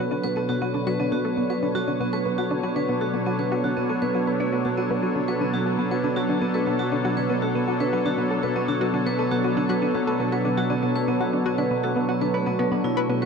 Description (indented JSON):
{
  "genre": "ambient, sequencer-driven space music",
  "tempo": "119 BPM",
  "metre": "4/4",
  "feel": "straight",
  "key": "B minor",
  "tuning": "A4 = 440 Hz",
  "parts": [
    { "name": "sweeping resonant pad", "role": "sustained chords", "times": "0.0-13.3 s", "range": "B2 to C#5", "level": "-25 LUFS", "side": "equal", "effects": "chorus" },
    { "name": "vibraphone with hard mallets", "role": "arpeggios", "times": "0.0-13.3 s", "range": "F#3 to B4", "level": "-27 LUFS", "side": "right 2 dB", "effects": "auto-pan, tape echo" },
    { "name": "analog pluck", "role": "riff", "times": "0.0-13.3 s", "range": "B3 to D5", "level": "-27 LUFS", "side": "left 1 dB", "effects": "chorus, tape echo" }
  ],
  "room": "wet huge ambient reverb, RT60 7.4 s",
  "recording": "dark, warm production",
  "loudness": "-21 LUFS",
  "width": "side -5 dB against mid",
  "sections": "0.0-13.3 A section",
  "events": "filter sweep on synth arpeggio sound 0.0-13.3",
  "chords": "0.0 Bm7"
}